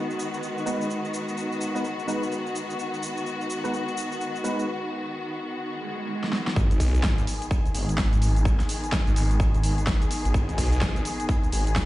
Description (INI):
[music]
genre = bass house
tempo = 127 BPM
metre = 4/4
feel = swing 62% on 16ths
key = G# minor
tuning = A4 = 441 Hz
[part]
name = rich studio string section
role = sustained chords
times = 0.0-11.9 s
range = D#3 to G#4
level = -30 LUFS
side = left 1 dB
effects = sidechain pumping, low-pass filter
[part]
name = airy breathy pad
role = texture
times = 0.0-4.7 s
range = G#3 to D#5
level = -36 LUFS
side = equal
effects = chorus, sidechain pumping
[part]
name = big-room dance drum kit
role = drums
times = 0.1-11.9 s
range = cabasa, hi-hat, snare drum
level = -32 LUFS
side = equal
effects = overdrive
[part]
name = percussive organ stab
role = stabs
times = 0.7-4.6 s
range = G#3 to B4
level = -32 LUFS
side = right 1 dB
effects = ensemble chorus, sidechain pumping, tape echo
[part]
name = swell and sub drop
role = sound effects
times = 5.8-8.5 s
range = none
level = -34 LUFS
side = right 2 dB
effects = none
[part]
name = phased detuned saw bass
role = bass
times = 6.6-11.9 s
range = G#1 to B1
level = -24 LUFS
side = equal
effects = phaser, tube saturation, sidechain pumping
[part]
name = electronic kick drum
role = drums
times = 6.6-11.9 s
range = none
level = -24 LUFS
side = equal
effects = overdrive
[sound]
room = light reverb, digital ambience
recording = played on a big sound system in a bare room, stone room reverb, nothing above 10.7 kHz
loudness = -23 LUFS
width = side -17 dB against mid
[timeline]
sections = 0.0-6.6 A section; 6.6-11.9 B section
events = filter sweep on synth stab 0.0-6.6; swell 5.8-6.6; drum fill 6.2-6.6; drop 6.6-11.9; impact 6.6-8.5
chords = 0.0 G#m